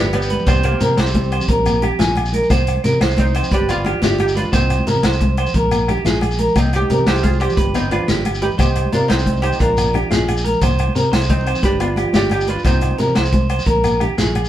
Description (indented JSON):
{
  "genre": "highlife guitar band",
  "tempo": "118 BPM (dotted quarters)",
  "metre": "12/8",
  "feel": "straight",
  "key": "C minor",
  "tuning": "A4 = 440 Hz",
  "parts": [
    { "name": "oud", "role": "melody", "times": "0.0-13.1 s", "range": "G3 to Ab4", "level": "-22 LUFS", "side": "right 2 dB", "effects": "none" },
    { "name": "nylon-string guitar", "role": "accompaniment", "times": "0.0-14.4 s", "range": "G3 to F4", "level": "-26 LUFS", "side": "left 5 dB", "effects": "none" },
    { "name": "electric guitar through a small old amp", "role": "arpeggios", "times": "0.0-14.5 s", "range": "G4 to Ab5", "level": "-21 LUFS", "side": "right 2 dB", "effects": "none" },
    { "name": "fingered electric bass", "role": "bass", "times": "0.0-14.5 s", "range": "G1 to C3", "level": "-20 LUFS", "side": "equal", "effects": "none" },
    { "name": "vintage drum kit", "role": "drums", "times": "0.1-14.4 s", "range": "hi-hat, kick drum, snare drum", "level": "-20 LUFS", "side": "equal", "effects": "none" },
    { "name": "agogo bells", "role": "percussion", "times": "0.1-14.5 s", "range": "none", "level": "-28 LUFS", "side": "left 2 dB", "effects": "none" },
    { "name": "congas", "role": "percussion", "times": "0.1-14.4 s", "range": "none", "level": "-24 LUFS", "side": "equal", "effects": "none" },
    { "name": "shekere", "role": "percussion", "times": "0.2-14.5 s", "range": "none", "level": "-26 LUFS", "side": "equal", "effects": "none" }
  ],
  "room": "moderate studio reverb, RT60 0.8 s",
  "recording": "band playing live in one room",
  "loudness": "-14 LUFS",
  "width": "side -12 dB against mid",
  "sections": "0.0-14.5 A section",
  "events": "none",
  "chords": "0.5 C5; 1.5 Bb5; 2.5 Cm; 3.5 G; 4.5 Cm; 5.5 Bb5; 6.6 Cm; 7.6 G; 8.6 Cm; 9.6 Bb; 10.6 Cm; 11.6 G; 12.7 Cm; 13.7 Bb5"
}